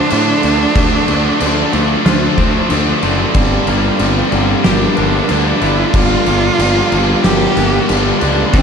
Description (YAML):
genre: post-rock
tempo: 92 BPM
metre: 4/4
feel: straight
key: unclear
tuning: A4 = 441 Hz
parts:
  - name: rich cello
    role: melody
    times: 0.0-8.6 s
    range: C4 to G4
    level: -18 LUFS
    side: right 3 dB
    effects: digital delay
  - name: twangy electric guitar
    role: arpeggios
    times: 0.0-8.6 s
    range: G2 to G4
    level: -25 LUFS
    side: left 6 dB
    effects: none
  - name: vibraphone with soft mallets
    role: arpeggios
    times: 0.0-8.6 s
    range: Bb4 to F5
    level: -26 LUFS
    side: right 3 dB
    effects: digital delay
  - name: cranked stack guitar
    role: riff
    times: 0.0-8.6 s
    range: G2 to D4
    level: -19 LUFS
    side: left 13 dB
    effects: overdrive
  - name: distorted electric guitar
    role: riff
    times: 0.0-8.6 s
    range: G2 to D4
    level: -19 LUFS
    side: right 14 dB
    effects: overdrive
  - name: fuzz picked electric bass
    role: bass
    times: 0.1-8.6 s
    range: F#1 to A2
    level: -17 LUFS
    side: equal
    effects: overdrive
  - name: oversized low-tuned drum kit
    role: drums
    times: 0.1-8.6 s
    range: crash cymbal, kick drum, snare drum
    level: -17 LUFS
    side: left 1 dB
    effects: none
room: studio ambience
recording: dark, warm production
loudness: -11 LUFS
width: side -6 dB against mid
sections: 0.0-8.6 A section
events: none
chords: 0.0 Dm7; 3.4 Gm7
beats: 0.10 | 0.75 1.40 2.05 2.70 | 3.35 4.00 4.65 5.30 | 5.95 6.59 7.24 7.89 | 8.54